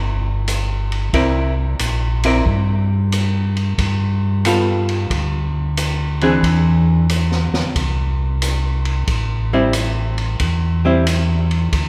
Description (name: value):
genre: soul jazz organ trio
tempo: 91 BPM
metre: 4/4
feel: swing 67% on 8ths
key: unclear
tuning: A4 = 440 Hz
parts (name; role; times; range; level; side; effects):
- mellow tonewheel organ; bass; 0.0-11.9 s; G1 to G2; -20 LUFS; equal; slow rotary speaker
- open jazz drum kit; drums; 0.5-11.9 s; hi-hat, kick drum, ride cymbal, snare drum; -26 LUFS; equal; none
- archtop guitar, miked and amplified; accompaniment; 1.1-11.1 s; E3 to D5; -21 LUFS; equal; none
room: wet concert hall reverb, RT60 2.3 s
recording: recorded in a church or concert hall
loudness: -18 LUFS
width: mono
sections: 0.0-11.9 A section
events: none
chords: 0.0 C9; 3.8 G9; 6.4 Eaug7; 9.1 Am7